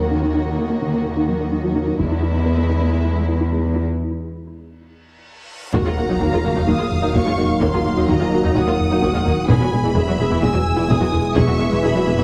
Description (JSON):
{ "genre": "cinematic, hybrid orchestral and electronic film score", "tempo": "128 BPM", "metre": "4/4", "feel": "straight", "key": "unclear", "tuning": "A4 = 440 Hz", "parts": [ { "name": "warm symphonic violin section", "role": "melody", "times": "0.0-12.2 s", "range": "B4 to E6", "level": "-33 LUFS", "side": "equal", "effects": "none" }, { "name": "warm symphonic violin section", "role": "second line", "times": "0.0-12.2 s", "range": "E4 to G#5", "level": "-31 LUFS", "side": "equal", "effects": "none" }, { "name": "warm symphonic viola section", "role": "accompaniment", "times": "0.0-12.2 s", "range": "E3 to G#4", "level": "-26 LUFS", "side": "equal", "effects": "none" }, { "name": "tight sequenced synth", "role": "arpeggios", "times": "0.0-12.2 s", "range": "Eb3 to E4", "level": "-27 LUFS", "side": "equal", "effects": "chorus, tape echo" }, { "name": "rich symphonic cello section", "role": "bass", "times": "0.0-12.2 s", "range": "Eb2 to E2", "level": "-24 LUFS", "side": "equal", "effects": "none" }, { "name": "taiko ensemble", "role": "drums", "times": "2.0-2.9, 5.7-12.2 s", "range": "none", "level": "-28 LUFS", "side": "equal", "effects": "none" }, { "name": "reverse cymbal and sub drop", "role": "sound effects", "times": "5.3-7.6 s", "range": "none", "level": "-32 LUFS", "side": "equal", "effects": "none" }, { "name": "warm French horn section", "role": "sustained chords", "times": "5.7-12.2 s", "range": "G#3 to G#4", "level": "-29 LUFS", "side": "equal", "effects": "none" }, { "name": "warm trombone section", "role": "sustained chords", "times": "5.7-12.2 s", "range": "E3 to G#3", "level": "-29 LUFS", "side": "equal", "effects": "none" }, { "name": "dark tuba", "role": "bass", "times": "5.7-12.1 s", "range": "E1 to Eb2", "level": "-28 LUFS", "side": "equal", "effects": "none" }, { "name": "rich symphonic double bass section", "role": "bass", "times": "5.7-12.1 s", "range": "E1 to Eb2", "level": "-26 LUFS", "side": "equal", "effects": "none" }, { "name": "warm sub bass", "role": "bass", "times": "5.7-12.2 s", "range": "Eb1 to E1", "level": "-34 LUFS", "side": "equal", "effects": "none" } ], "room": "wet scoring stage reverb, RT60 1.7 s", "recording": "heavily compressed radio sound, multiband compression, small room ambience", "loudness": "-19 LUFS", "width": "mono", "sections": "0.0-5.7 A section; 5.7-12.2 B section", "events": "break 3.9-5.7; reverse cymbal 5.3-5.7; drum fill 5.3-5.7; impact 5.7-7.6", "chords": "0.0 Ebm; 2.0 E; 5.7 Ebm; 9.5 E" }